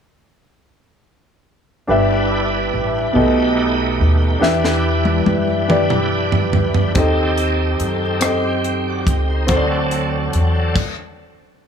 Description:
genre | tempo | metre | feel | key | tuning
slow gospel | 47 BPM (dotted quarters) | 6/8 | straight | G major | A4 = 440 Hz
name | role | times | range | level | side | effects
warm concert grand piano | accompaniment | 1.9-10.8 s | G2 to E5 | -18 LUFS | equal | none
bright tonewheel organ | sustained chords | 1.9-10.8 s | F#3 to Eb5 | -22 LUFS | right 3 dB | slow rotary speaker, chorus vibrato
upright bass | bass | 1.9-10.7 s | G1 to F#2 | -20 LUFS | equal | none
crisp fusion drum kit | drums | 4.4-11.0 s | crash cymbal, hi-hat, kick drum, rim click, snare drum, toms | -19 LUFS | equal | none
room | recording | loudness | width
light reverb, small room ambience | none | -15 LUFS | side -7 dB against mid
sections
1.9-11.7 A section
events
drum fill 4.4-7.0; stop 10.8-11.7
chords
1.9 G6; 3.2 B7b13; 4.4 Em7; 7.0 Cm6/Eb; 9.5 D7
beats
| 1.89 3.16 | 4.43 5.70 | 6.96 8.23 | 9.50 10.76

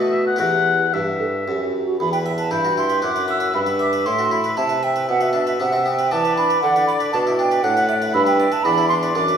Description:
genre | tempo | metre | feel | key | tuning
classical, baroque-style sonata movement with continuo | 117 BPM | 3/4 | rubato | E minor | A4 = 440 Hz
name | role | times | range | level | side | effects
hollow concert flute | second line | 0.0-9.4 s | F#4 to E6 | -20 LUFS | right 4 dB | none
harpsichord | accompaniment | 0.0-9.4 s | E2 to E5 | -26 LUFS | left 1 dB | none
warm bassoon | bass | 0.0-9.4 s | E2 to E3 | -23 LUFS | equal | none
warm oboe | melody | 0.1-9.4 s | D5 to G5 | -23 LUFS | left 5 dB | none
room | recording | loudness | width
wet recital hall reverb, RT60 1.3 s | recorded in a church or concert hall | -17 LUFS | side -7 dB against mid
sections
0.0-2.0 A section; 2.0-9.4 B section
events
none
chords
0.4 Em; 3.5 Em/G; 5.1 Bm; 8.1 G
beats
| 0.40 0.93 1.47 | 2.00 2.52 3.03 | 3.55 4.06 4.57 | 5.09 5.60 6.12 | 6.62 7.13 7.64 | 8.15 8.65 9.15

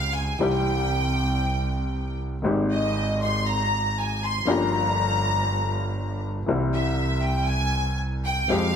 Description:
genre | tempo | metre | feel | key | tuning
tango | 119 BPM | 4/4 | rubato | unclear | A4 = 441 Hz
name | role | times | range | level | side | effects
bright studio violin section | second line | 0.0-8.8 s | Eb5 to C6 | -26 LUFS | left 1 dB | none
warm upright piano | accompaniment | 0.0-8.8 s | G1 to G4 | -26 LUFS | left 2 dB | none
clear double bass | bass | 0.0-8.8 s | G1 to F2 | -27 LUFS | right 2 dB | none
room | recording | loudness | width
moderate recital hall reverb, RT60 1.7 s | none | -22 LUFS | side -8 dB against mid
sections
0.0-8.8 A section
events
violin section solo 0.0-8.8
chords
0.4 C; 2.4 Abmaj7; 4.5 Gm7b5; 6.5 C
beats
| 0.41 0.92 1.43 1.94 | 2.45 2.96 3.46 3.97 | 4.47 4.98 5.48 5.98 | 6.49 6.99 7.49 8.00 | 8.50

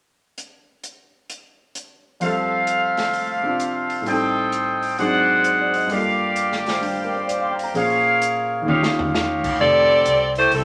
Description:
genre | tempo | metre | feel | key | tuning
jazz, big band swing | 130 BPM | 4/4 | swing 65% on 8ths | F major | A4 = 440 Hz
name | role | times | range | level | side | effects
swinging big-band drum kit | drums | 0.4-10.6 s | crash cymbal, hi-hat, kick drum, snare drum, toms | -32 LUFS | equal | none
clear baby grand piano | accompaniment | 2.2-9.6 s | Eb2 to Bb5 | -27 LUFS | equal | none
mellow trumpet section | stabs | 2.2-9.6 s | G4 to D6 | -22 LUFS | equal | none
clear saxophone section | melody | 9.6-10.6 s | G3 to D5 | -17 LUFS | equal | none
upright bass | bass | 9.6-10.6 s | F1 to C2 | -30 LUFS | equal | none
room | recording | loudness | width
wet studio reverb, RT60 0.6 s | none | -20 LUFS | mono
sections
0.4-2.2 A section; 2.2-9.6 B section; 9.6-10.6 C section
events
drum fill 8.7-9.1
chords
0.4 N.C.; 2.2 Fmaj7; 4.1 Am7b5; 5.0 Ab7#11; 5.9 Gm7; 7.8 Bbm7; 8.7 Eb9; 9.6 Fmaj9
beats
| 0.38 0.84 1.30 1.76 | 2.22 2.68 3.14 3.60 | 4.06 4.53 4.99 5.45 | 5.91 6.37 6.83 7.29 | 7.75 8.21 8.67 9.13 | 9.59 10.05 10.51

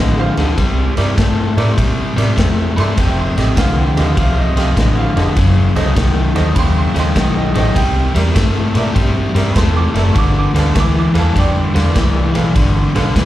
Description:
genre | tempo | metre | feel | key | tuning
electric blues shuffle | 100 BPM | 4/4 | swing 66% on 8ths | unclear | A4 = 439 Hz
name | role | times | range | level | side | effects
clear upright piano | accompaniment | 0.0-13.1 s | Eb4 to D6 | -23 LUFS | right 5 dB | plate reverb, slapback echo
overdriven electric guitar | riff | 0.0-13.3 s | F2 to A3 | -17 LUFS | left 3 dB | spring reverb
vintage muted fingered electric bass | bass | 0.0-13.3 s | F1 to Bb2 | -16 LUFS | equal | none
raw garage drum kit | drums | 0.4-13.3 s | kick drum, ride cymbal, snare drum | -18 LUFS | equal | none
room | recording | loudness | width
light reverb | live gig heard through the venue's PA, club reverb | -12 LUFS | side -14 dB against mid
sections
0.0-13.3 A section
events
none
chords
0.0 F9; 0.6 C9; 3.0 F9; 5.4 F#dim7; 7.8 C9; 10.2 G9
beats
| 0.57 1.17 1.77 2.37 | 2.97 3.57 4.17 4.77 | 5.37 5.97 6.57 7.17 | 7.76 8.36 8.96 9.56 | 10.16 10.76 11.36 11.96 | 12.56 13.16

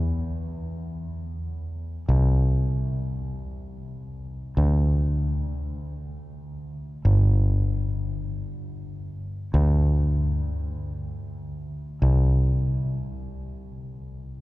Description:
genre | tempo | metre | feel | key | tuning
rock | free time | none | none | unclear | A4 = 440 Hz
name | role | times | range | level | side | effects
overdriven fingered electric bass | bass | 0.0-14.4 s | G1 to E2 | -24 LUFS | equal | none
room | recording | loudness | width
wet cathedral reverb, RT60 6.6 s | recorded in a church or concert hall | -22 LUFS | side -18 dB against mid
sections
0.0-2.1 A section; 2.1-14.4 B section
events
none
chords
none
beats
free time

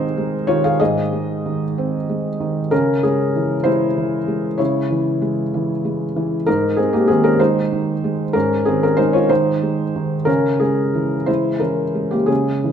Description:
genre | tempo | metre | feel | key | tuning
neoclassical minimalist piano | 58-65 BPM (dotted quarters) | 6/8 | rubato | Ab major | A4 = 439 Hz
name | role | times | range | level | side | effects
felt-muted upright piano | solo | 0.0-12.7 s | Ab2 to F5 | -16 LUFS | equal | none
room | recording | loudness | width
moderate scoring stage reverb, RT60 1.6 s | minimal, uncompressed stereo recording | -16 LUFS | side -8 dB against mid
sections
0.0-12.7 A section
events
none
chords
0.0 Ab; 2.7 Dbm; 6.5 Ab; 10.3 Dbm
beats
| 0.80 1.76 | 2.71 3.65 | 4.59 5.53 | 6.46 7.39 | 8.35 9.30 | 10.28 11.28 | 12.29

